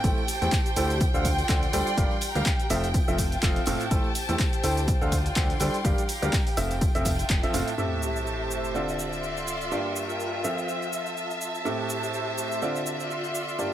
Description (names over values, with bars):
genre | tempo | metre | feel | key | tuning
piano house | 124 BPM | 4/4 | swing 56% on 16ths | D minor | A4 = 441 Hz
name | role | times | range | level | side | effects
dark studio violin section | sustained chords | 0.0-13.7 s | E5 to G5 | -33 LUFS | left 1 dB | sidechain pumping
clear upright piano | riff | 0.0-13.7 s | G2 to G5 | -30 LUFS | right 1 dB | sidechain pumping, low-pass filter, digital delay
fat analog bass | bass | 0.0-7.6 s | F1 to E2 | -29 LUFS | equal | sidechain pumping
electronic kick drum | drums | 0.0-7.4 s | none | -26 LUFS | equal | none
punchy analog drum machine | drums | 0.0-13.7 s | handclaps, hi-hat, shaker | -33 LUFS | right 1 dB | none
tambourine | percussion | 0.0-7.8 s | none | -41 LUFS | left 4 dB | none
rich chamber string section | texture | 0.0-13.7 s | F4 to C6 | -34 LUFS | equal | sidechain pumping
sub drop | sound effects | 7.8-9.7 s | none | -35 LUFS | equal | none
room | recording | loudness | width
light reverb | none | -24 LUFS | side -11 dB against mid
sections
0.0-7.8 A section; 7.8-13.7 B section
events
band accent 7.3; impact 7.8-9.7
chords
0.0 Am7; 1.0 Dm7; 2.0 Gm7; 2.7 Fmaj7; 3.9 Am7; 4.9 Dm7; 5.8 Gm7; 6.6 Fmaj7; 7.8 Am7; 8.7 Dm7; 9.7 Gm7; 10.4 Fmaj7; 11.7 Am7; 12.6 Dm7